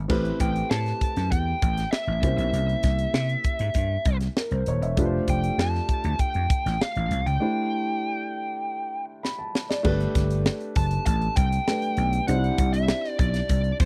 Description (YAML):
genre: polished 1980s jazz-funk pop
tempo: 98 BPM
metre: 4/4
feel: straight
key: G major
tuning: A4 = 438 Hz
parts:
  - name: dark grand piano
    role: accompaniment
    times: 0.0-13.9 s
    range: A3 to B5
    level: -32 LUFS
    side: equal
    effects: lush chorus
  - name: vintage slap bass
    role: bass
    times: 0.0-13.9 s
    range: Eb1 to C3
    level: -28 LUFS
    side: equal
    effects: none
  - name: tight funk drum kit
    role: drums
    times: 0.1-13.9 s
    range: crash cymbal, hi-hat, kick drum, snare drum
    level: -28 LUFS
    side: equal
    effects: none
  - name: biting lead guitar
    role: melody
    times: 0.4-13.9 s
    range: C5 to A5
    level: -31 LUFS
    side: equal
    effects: overdrive
room: little or no reverb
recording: dry, close 1970s-style studio recording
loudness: -25 LUFS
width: mono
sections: 0.1-9.8 A section; 9.8-13.9 B section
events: break 7.4-9.8; drum fill 9.2-9.8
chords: 0.1 Am7; 2.2 C7b9; 5.0 F6; 7.4 D7sus4; 9.8 Gadd9; 12.3 Cmaj7